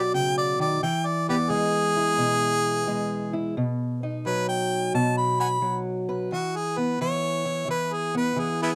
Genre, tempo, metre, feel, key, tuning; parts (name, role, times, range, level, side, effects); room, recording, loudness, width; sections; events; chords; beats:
acoustic country blues, solo or duo; 87 BPM; 4/4; swing 65% on 8ths; E major; A4 = 439 Hz
bright harmonica; melody; 0.0-8.8 s; B3 to B5; -27 LUFS; equal
fingerpicked steel-string acoustic guitar; accompaniment; 0.0-8.8 s; B2 to B4; -29 LUFS; equal
light reverb; dry, close 1970s-style studio recording; -25 LUFS; mono
0.0-6.3 A section; 6.3-8.8 B section
harmonica solo 0.0-6.3
0.0 B; 0.8 E; 3.6 B; 6.3 E
0.13 | 0.82 1.51 2.20 2.89 | 3.57 4.26 4.95 5.63 | 6.32 7.01 7.70 8.38